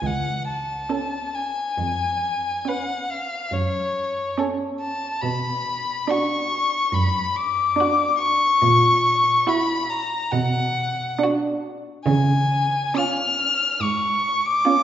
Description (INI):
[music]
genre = classical, slow romantic movement for string quartet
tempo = 70 BPM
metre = 4/4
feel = rubato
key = F# minor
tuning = A4 = 440 Hz
[part]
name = rich violin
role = melody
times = 0.0-14.8 s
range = C#5 to E#6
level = -21 LUFS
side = left 3 dB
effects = none
[part]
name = rich cello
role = bass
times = 0.0-14.5 s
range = C#2 to C#3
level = -24 LUFS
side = right 2 dB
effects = none
[part]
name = warm violin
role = second line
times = 0.9-14.8 s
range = E#4 to B4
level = -32 LUFS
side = right 1 dB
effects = none
[part]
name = warm viola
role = accompaniment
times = 0.9-14.8 s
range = C#4 to E4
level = -25 LUFS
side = right 4 dB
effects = none
[sound]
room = wet recital hall reverb, RT60 1.7 s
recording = heard from further back in the room, nothing above 7.8 kHz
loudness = -20 LUFS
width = side -10 dB against mid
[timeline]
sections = 0.0-14.8 A section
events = none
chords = 0.0 F#m; 1.8 C#7/E#; 3.5 F#m; 5.2 Bm; 8.6 F#7/A#; 10.3 Bm; 12.1 C#